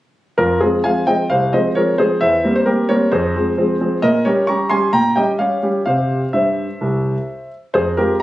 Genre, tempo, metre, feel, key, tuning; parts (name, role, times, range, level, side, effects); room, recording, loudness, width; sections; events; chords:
classical-period piano sonatina; 131 BPM; 4/4; straight; F minor; A4 = 442 Hz
warm concert grand piano; solo; 0.4-8.2 s; C2 to Db6; -14 LUFS; equal
light reverb; recorded on a phone in the room, club reverb, compression; -14 LUFS; side -15 dB against mid
0.4-8.2 A section
0.4 Fm; 2.2 C7/E; 3.1 Fm; 4.0 Gdim/Bb; 5.9 C